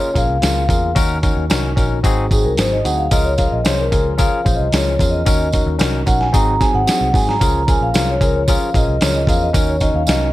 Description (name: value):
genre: uptempo 1960s-style soul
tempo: 112 BPM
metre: 4/4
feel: straight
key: Db major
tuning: A4 = 439 Hz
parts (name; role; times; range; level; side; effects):
- vibraphone with soft mallets; melody; 0.0-10.3 s; Ab4 to Bb5; -19 LUFS; equal; none
- barky tine electric piano; accompaniment; 0.0-10.3 s; C4 to C5; -22 LUFS; left 4 dB; overdrive, auto-pan
- tonewheel organ; sustained chords; 0.0-10.3 s; Db3 to Bb4; -30 LUFS; right 2 dB; none
- vintage muted picked electric bass; bass; 0.2-10.3 s; Ab1 to Ab2; -20 LUFS; equal; none
- dusty soul sampler-style drum kit; drums; 0.2-10.2 s; hi-hat, kick drum, snare drum; -18 LUFS; equal; none
- tambourine; percussion; 0.2-10.2 s; none; -29 LUFS; right 5 dB; none
room: little or no reverb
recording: none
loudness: -14 LUFS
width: side -16 dB against mid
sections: 0.0-10.3 A section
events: vibraphone solo 0.0-10.3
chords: 0.0 Db6; 1.0 Ebm7; 2.0 Ab7; 3.1 Db6; 5.3 Ebm7; 6.3 Ab7; 7.4 Db6; 9.5 Ebm7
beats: 0.42 | 0.96 1.50 2.04 2.58 | 3.12 3.66 4.19 4.73 | 5.27 5.80 6.34 6.88 | 7.41 7.95 8.48 9.01 | 9.54 10.08